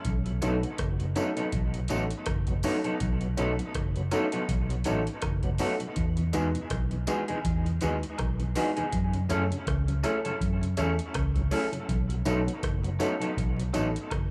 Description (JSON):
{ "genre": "lovers rock reggae", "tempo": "81 BPM", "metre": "4/4", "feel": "swing 57% on 16ths", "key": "unclear", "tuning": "A4 = 440 Hz", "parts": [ { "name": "booming analog drum machine", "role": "drums", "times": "0.0-14.3 s", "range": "hi-hat, kick drum, rim click", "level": "-35 LUFS", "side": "equal", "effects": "none" }, { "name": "vintage muted fingered electric bass", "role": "bass", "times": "0.1-14.3 s", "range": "F#1 to F#2", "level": "-32 LUFS", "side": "equal", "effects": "none" }, { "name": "tonewheel organ", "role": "accompaniment", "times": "0.3-13.8 s", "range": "E2 to E4", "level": "-41 LUFS", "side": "equal", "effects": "overdrive, chorus vibrato, slow rotary speaker, tape echo" }, { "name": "warm baby grand piano", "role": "accompaniment", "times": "0.4-13.9 s", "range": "G#3 to G#4", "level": "-36 LUFS", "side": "equal", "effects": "none" }, { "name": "electric guitar through a small old amp", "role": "stabs", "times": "0.4-13.9 s", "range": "E3 to A4", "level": "-36 LUFS", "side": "equal", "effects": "tape echo" }, { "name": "tambourine and woodblock", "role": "percussion", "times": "0.4-14.3 s", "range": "none", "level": "-46 LUFS", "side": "equal", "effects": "none" } ], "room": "light reverb, digital ambience", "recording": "none", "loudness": "-29 LUFS", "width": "mono", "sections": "0.0-14.3 A section", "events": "none", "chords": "0.1 B7; 6.0 Emaj7; 8.9 F#m7; 11.9 B7", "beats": "| 0.05 0.79 1.53 2.27 | 3.01 3.75 4.49 5.23 | 5.97 6.71 7.45 8.19 | 8.93 9.67 10.41 11.15 | 11.89 12.63 13.37 14.11" }